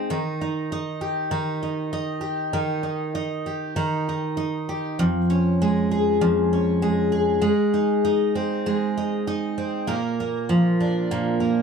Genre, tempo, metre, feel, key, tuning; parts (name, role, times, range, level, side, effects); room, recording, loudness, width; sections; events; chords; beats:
pop; 98 BPM; 4/4; swing 55% on 16ths; Eb mixolydian; A4 = 440 Hz
picked twelve-string acoustic guitar; solo; 0.0-11.6 s; F2 to Bb4; -21 LUFS; equal
light reverb; dark, warm production; -21 LUFS; side -6 dB against mid
0.0-9.9 A section; 9.9-11.6 B section
0.1 Eb; 5.0 Db/F; 7.4 Ab; 9.9 Bb
| 0.10 0.71 1.32 1.93 | 2.54 3.15 3.76 4.37 | 4.98 5.59 6.21 6.82 | 7.43 8.04 8.65 9.26 | 9.87 10.48 11.10